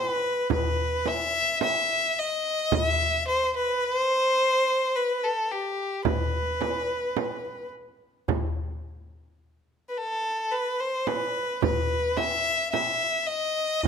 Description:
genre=Arabic maqam ensemble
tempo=108 BPM (eighths)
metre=10/8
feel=straight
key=E maqam nahawand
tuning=A4 = 440 Hz
part: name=clear violin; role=melody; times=0.0-13.9 s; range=G4 to E5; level=-24 LUFS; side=left 1 dB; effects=none
part: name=darbuka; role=percussion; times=0.5-13.9 s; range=none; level=-32 LUFS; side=left 1 dB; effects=none
part: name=frame drum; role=percussion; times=0.5-13.9 s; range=none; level=-30 LUFS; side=right 10 dB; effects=none
room=moderate recital hall reverb, RT60 1.6 s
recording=close, detailed microphones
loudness=-24 LUFS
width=side -7 dB against mid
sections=0.0-13.9 A section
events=none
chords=none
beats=0.51 1.06 1.62 2.17 | 2.73 3.29 3.84 4.40 4.96 5.51 6.07 6.62 7.18 7.74 | 8.29 8.85 9.40 9.96 10.52 11.07 11.63 12.19 12.74 13.30 | 13.86

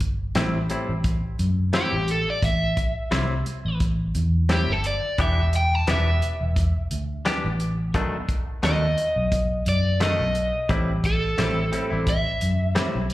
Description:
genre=straight-eighth soul blues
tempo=87 BPM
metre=4/4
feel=swing 54% on 16ths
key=unclear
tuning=A4 = 440 Hz
part: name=vintage muted fingered electric bass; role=bass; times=0.0-13.1 s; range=E1 to F#2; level=-23 LUFS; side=equal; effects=none
part: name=warm soul drum kit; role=drums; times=0.0-13.1 s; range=hi-hat, kick drum, snare drum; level=-27 LUFS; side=equal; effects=none
part: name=direct-recorded clean electric guitar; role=stabs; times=0.4-13.0 s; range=A2 to G4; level=-28 LUFS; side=left 2 dB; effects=slapback echo, analog delay
part: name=overdriven semi-hollow guitar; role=melody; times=1.8-13.1 s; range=G4 to A5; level=-26 LUFS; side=equal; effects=slapback echo
room=light reverb, small room ambience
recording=live gig heard through the venue's PA, club reverb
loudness=-21 LUFS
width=side -16 dB against mid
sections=0.0-13.1 A section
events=none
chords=0.0 Am7; 5.2 Em7; 7.9 B7#9; 10.7 Am7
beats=0.35 1.04 1.73 | 2.42 3.11 3.80 4.49 | 5.18 5.87 6.56 7.25 | 7.94 8.63 9.32 10.01 | 10.69 11.38 12.07 12.76

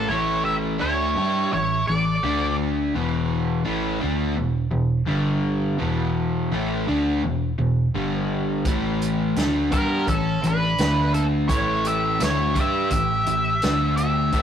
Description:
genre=blues rock power trio and southern rock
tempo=84 BPM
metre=4/4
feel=straight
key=unclear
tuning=A4 = 437 Hz
part: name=octave-fuzz lead guitar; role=melody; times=0.0-2.6, 9.7-14.4 s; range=A4 to E5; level=-23 LUFS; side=equal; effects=wah, distortion
part: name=bluesy overdriven lead guitar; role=second line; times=0.0-2.6, 9.7-14.4 s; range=A#3 to A4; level=-34 LUFS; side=right 4 dB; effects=distortion
part: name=overdriven semi-hollow guitar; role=riff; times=0.0-14.4 s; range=E2 to G4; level=-22 LUFS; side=equal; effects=none
part: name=vintage muted fingered electric bass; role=bass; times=0.0-14.4 s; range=E1 to G2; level=-30 LUFS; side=equal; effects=none
part: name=vintage drum kit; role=drums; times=8.7-14.4 s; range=hi-hat, kick drum, snare drum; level=-26 LUFS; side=equal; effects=none
room=light reverb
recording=rough rehearsal-room recording, warm saturation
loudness=-20 LUFS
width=side -9 dB against mid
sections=0.0-14.4 A section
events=none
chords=0.1 A7; 2.2 D5; 3.0 E5; 5.1 G5; 5.8 E5; 7.9 G5; 8.7 A5; 10.8 D5; 11.5 A5; 13.6 D5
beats=| 0.10 0.81 1.52 2.24 | 2.95 3.67 4.38 5.09 | 5.81 6.52 7.23 7.94 | 8.65 9.37 10.08 10.79 | 11.50 12.21 12.92 13.63 | 14.34

